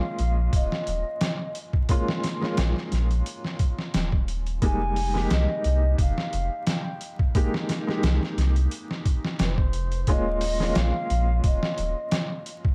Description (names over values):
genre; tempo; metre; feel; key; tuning
trip hop; 88 BPM; 4/4; swing 54% on 16ths; unclear; A4 = 439 Hz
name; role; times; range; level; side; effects
mellow wooden flute; melody; 0.0-12.4 s; C5 to Ab5; -34 LUFS; equal; tape echo
felt-muted upright piano; accompaniment; 0.0-12.7 s; G3 to G4; -34 LUFS; equal; tremolo, tape echo
warm sub bass; bass; 0.2-11.9 s; Eb1 to C2; -27 LUFS; equal; none
trip hop sampler-style drum kit; drums; 0.2-12.7 s; hi-hat, kick drum, snare drum; -28 LUFS; equal; small room ambience
room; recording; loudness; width
small room ambience; dark, warm production, vinyl crackle; -25 LUFS; mono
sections
0.0-12.7 A section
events
none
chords
0.0 Eb9sus4; 4.6 Fm11; 10.1 Eb9sus4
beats
0.53 1.21 | 1.89 2.57 3.26 3.94 | 4.62 5.30 5.98 6.67 | 7.35 8.03 8.71 9.39 | 10.07 10.76 11.44 12.12